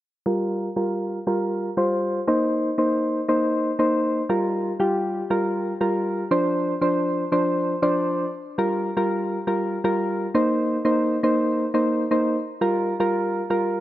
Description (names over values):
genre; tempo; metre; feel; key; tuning
pop; 119 BPM; 4/4; straight; G minor; A4 = 440 Hz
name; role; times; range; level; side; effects
soft electric-piano-like synth keys; solo; 0.3-13.8 s; F3 to D5; -21 LUFS; equal; chorus, low-pass filter
room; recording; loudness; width
light reverb; none; -21 LUFS; side -14 dB against mid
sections
0.3-8.3 A section; 8.3-13.8 B section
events
filter sweep on synth keys 0.3-8.3; synth keys fill 7.6-8.3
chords
0.3 Gm7; 2.3 Cm7; 4.3 Gm7; 6.3 Dm7; 8.3 Gm7; 10.3 Cm7; 12.4 Gm7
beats
| 0.26 0.77 1.27 1.78 | 2.28 2.78 3.29 3.79 | 4.30 4.80 5.30 5.81 | 6.31 6.82 7.32 7.83 | 8.33 8.84 9.34 9.84 | 10.35 10.85 11.36 11.86 | 12.36 12.87 13.37